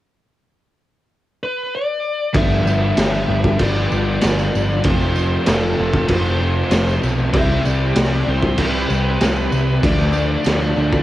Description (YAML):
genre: rock, shoegaze and dream pop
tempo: 96 BPM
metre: 4/4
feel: straight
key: unclear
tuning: A4 = 445 Hz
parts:
  - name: bluesy overdriven lead guitar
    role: melody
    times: 1.4-11.0 s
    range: A4 to E5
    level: -24 LUFS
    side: left 3 dB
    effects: distortion, analog delay
  - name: cranked stack guitar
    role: riff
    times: 2.3-11.0 s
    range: F2 to E4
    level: -25 LUFS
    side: right 1 dB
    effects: overdrive, cassette tape
  - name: raw garage guitar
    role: riff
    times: 2.3-11.0 s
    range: F2 to G4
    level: -29 LUFS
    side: right 7 dB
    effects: none
  - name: thick fuzz guitar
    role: riff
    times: 2.3-11.0 s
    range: F2 to D4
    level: -24 LUFS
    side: left 4 dB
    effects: distortion, ensemble chorus, cassette tape
  - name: fuzz picked electric bass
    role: bass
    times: 2.3-11.0 s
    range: F1 to D2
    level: -20 LUFS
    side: equal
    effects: overdrive
  - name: raw garage drum kit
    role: drums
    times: 2.3-11.0 s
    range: crash cymbal, kick drum, snare drum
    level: -20 LUFS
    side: equal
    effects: none
  - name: phased string machine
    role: sustained chords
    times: 2.4-11.0 s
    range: C4 to B5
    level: -31 LUFS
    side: right 1 dB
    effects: none
  - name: tambourine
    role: percussion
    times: 2.5-11.0 s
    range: none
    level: -38 LUFS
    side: right 10 dB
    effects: none
room: light reverb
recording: home recording on cassette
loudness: -15 LUFS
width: side -14 dB against mid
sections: 0.0-2.3 A section; 2.3-11.0 B section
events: none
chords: 0.0 N.C.; 2.3 G7; 4.8 Fmaj7; 7.3 Cmaj7; 9.8 Dm7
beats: 0.47 1.10 1.72 | 2.35 2.97 3.59 4.22 | 4.84 5.46 6.09 6.71 | 7.34 7.96 8.58 9.21 | 9.83 10.46